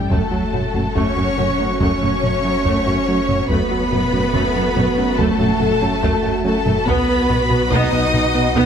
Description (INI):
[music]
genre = cinematic, hybrid orchestral and electronic film score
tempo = 71 BPM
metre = 4/4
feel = straight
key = F# minor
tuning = A4 = 440 Hz
[part]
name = warm symphonic violin section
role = melody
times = 0.0-8.7 s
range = A5 to D#6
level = -25 LUFS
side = left 1 dB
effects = none
[part]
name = rich symphonic violin section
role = second line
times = 0.0-8.7 s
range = A4 to D#5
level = -24 LUFS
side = left 4 dB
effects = none
[part]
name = mellow French horn section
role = sustained chords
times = 0.0-8.7 s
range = A3 to D#4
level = -26 LUFS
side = left 2 dB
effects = none
[part]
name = thumb-piano-like synth pluck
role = arpeggios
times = 0.0-8.7 s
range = F#3 to B4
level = -28 LUFS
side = right 2 dB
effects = none
[part]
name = fat analog bass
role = riff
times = 0.0-8.7 s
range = F#2 to B3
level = -23 LUFS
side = right 2 dB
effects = none
[part]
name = rich symphonic cello section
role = bass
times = 0.0-8.7 s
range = A3 to D#4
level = -25 LUFS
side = right 2 dB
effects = none
[part]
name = saturated sub bass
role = bass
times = 0.0-8.7 s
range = F#1 to B1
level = -28 LUFS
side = left 1 dB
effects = none
[part]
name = rich symphonic viola section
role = accompaniment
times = 0.1-8.7 s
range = A3 to F#4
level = -25 LUFS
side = right 1 dB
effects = none
[part]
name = clear trombone section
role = sustained chords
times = 0.1-8.7 s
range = F#3 to B3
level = -27 LUFS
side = right 3 dB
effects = none
[part]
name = clear symphonic double bass section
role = bass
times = 0.1-8.6 s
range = B1 to F#2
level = -27 LUFS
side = right 3 dB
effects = none
[part]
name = taiko ensemble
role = drums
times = 0.1-8.7 s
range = none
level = -25 LUFS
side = left 1 dB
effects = none
[sound]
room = moderate scoring stage reverb, RT60 1.7 s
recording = none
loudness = -15 LUFS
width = side -8 dB against mid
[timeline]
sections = 0.1-8.7 A section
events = none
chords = 0.1 F#m; 6.9 B